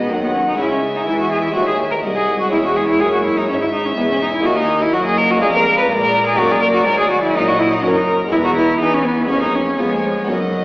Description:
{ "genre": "classical, baroque-style concerto movement with solo episodes", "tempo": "124 BPM", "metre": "4/4", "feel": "straight", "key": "unclear", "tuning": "A4 = 436 Hz", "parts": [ { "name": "rich cello", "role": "melody", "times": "0.0-10.6 s", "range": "F#3 to B4", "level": "-17 LUFS", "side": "equal", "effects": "none" }, { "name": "warm chamber violin section", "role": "melody", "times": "0.0-10.6 s", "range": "D#5 to A#5", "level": "-27 LUFS", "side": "left 1 dB", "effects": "none" }, { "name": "warm chamber violin section", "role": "second line", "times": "0.0-10.6 s", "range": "A#4 to F#5", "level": "-22 LUFS", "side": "equal", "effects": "none" }, { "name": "harpsichord", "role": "accompaniment", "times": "0.0-10.6 s", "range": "B#1 to F#4", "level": "-22 LUFS", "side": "equal", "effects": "none" }, { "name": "warm chamber viola section", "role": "accompaniment", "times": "0.0-10.6 s", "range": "F#3 to B3", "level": "-24 LUFS", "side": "equal", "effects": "none" }, { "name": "rich chamber double bass section", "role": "bass", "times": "0.0-10.6 s", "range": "E1 to E#2", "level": "-31 LUFS", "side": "equal", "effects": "none" }, { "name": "warm studio cello section", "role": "bass", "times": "0.0-10.6 s", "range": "B#1 to E#3", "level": "-27 LUFS", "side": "equal", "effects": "none" } ], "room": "wet scoring stage reverb, RT60 1.7 s", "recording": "heard from further back in the room, AM radio sound", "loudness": "-14 LUFS", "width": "side -24 dB against mid", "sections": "0.0-10.6 A section", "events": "none", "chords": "0.0 B; 0.6 C#m; 1.6 G#7/D#; 2.5 C#m/E; 4.5 D#m; 5.4 A#7/E#; 6.4 D#m/F#; 8.3 E; 9.3 C#7/E#", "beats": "0.10 | 0.59 1.07 1.56 2.04 | 2.53 3.01 3.49 3.98 | 4.46 4.94 5.42 5.90 | 6.39 6.87 7.35 7.84 | 8.33 8.81 9.30 9.79 | 10.29" }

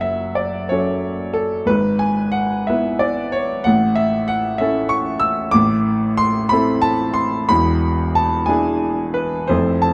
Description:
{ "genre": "classical, romantic character piece for solo piano", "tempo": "61 BPM (dotted quarters)", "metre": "6/8", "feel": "rubato", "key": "A major", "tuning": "A4 = 440 Hz", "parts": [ { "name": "warm grand piano", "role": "solo", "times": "0.0-9.9 s", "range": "E1 to E6", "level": "-18 LUFS", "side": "equal", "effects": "none" } ], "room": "light reverb", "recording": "close, detailed microphones", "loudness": "-18 LUFS", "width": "mono", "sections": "0.0-9.9 A section", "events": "none", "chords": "0.0 F#m; 1.7 E/G#; 3.6 A; 5.5 Am; 7.5 E7", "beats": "0.72 | 1.70 2.68 | 3.64 4.60 | 5.55 6.52 | 7.51 8.51 | 9.51" }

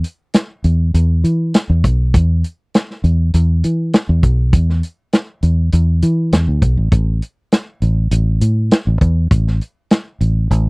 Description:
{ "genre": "straight-eighth soul blues", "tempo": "100 BPM", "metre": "4/4", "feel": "straight", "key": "unclear", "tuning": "A4 = 440 Hz", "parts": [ { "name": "fingered electric bass", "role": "bass", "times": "0.0-10.7 s", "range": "A1 to E3", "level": "-13 LUFS", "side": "equal", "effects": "none" }, { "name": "warm soul drum kit", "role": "drums", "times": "0.0-10.7 s", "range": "hi-hat, kick drum, snare drum", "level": "-14 LUFS", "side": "equal", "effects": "none" } ], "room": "little or no reverb", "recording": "dry, close 1970s-style studio recording", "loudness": "-13 LUFS", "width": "side -40 dB against mid", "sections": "0.0-10.7 A section", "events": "none", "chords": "none", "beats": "0.35 0.94 1.54 | 2.14 2.74 3.34 3.94 | 4.53 5.13 5.73 6.33 | 6.92 7.52 8.12 8.71 | 9.31 9.91 10.51" }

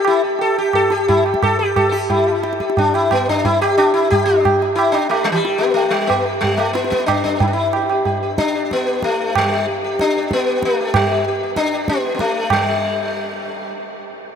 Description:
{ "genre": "indian classical, Hindustani", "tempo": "174-195 BPM", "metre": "4/4", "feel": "straight", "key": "G raga bhupali", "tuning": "A4 = 440 Hz", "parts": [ { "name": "sitar", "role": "melody", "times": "0.0-13.7 s", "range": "E3 to A4", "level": "-16 LUFS", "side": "left 2 dB", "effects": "ping-pong delay" }, { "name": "tabla", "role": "percussion", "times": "0.0-12.6 s", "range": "none", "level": "-21 LUFS", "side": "right 4 dB", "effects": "none" } ], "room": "wet huge ambient reverb, RT60 8.6 s", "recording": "dreamy mix soaked in reverb", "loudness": "-15 LUFS", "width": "side -7 dB against mid", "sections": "0.0-2.1 A section; 2.1-12.5 B section; 12.5-14.4 C section", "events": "speeding up 0.0-14.4", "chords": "none", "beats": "0.05 0.40 | 0.74 1.08 1.42 1.76 | 2.10 2.44 2.77 3.11 | 3.45 3.78 4.12 4.45 | 4.78 5.12 5.45 5.78 | 6.11 6.43 6.76 7.09 | 7.41 7.74 8.06 8.39 | 8.71 9.03 9.35 9.67 | 9.99 10.31 10.63 10.95 | 11.26 11.58 11.89 12.21 | 12.52 12.83 13.14 13.45" }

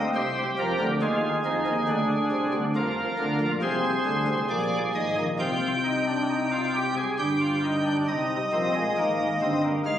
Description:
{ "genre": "classical, baroque-style 3-part fugue for pipe organ", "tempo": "68 BPM", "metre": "3/4", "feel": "straight", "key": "C minor", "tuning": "A4 = 440 Hz", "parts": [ { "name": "pipe organ, cornet", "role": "solo", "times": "0.0-10.0 s", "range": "G1 to G5", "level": "-23 LUFS", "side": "equal", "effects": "none" } ], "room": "wet recital hall reverb, RT60 1.4 s", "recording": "recorded on a phone in the room, club reverb", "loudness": "-23 LUFS", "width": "side -10 dB against mid", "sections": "0.0-8.1 A section; 8.1-10.0 B section", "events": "none", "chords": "0.2 Fm/C; 1.9 Csus2; 2.8 Ddim; 5.4 Cm; 7.2 G5; 8.1 Cm", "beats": "| 0.17 1.03 1.90 | 2.77 3.63 4.51 | 5.41 6.30 7.20 | 8.09 8.98 9.86" }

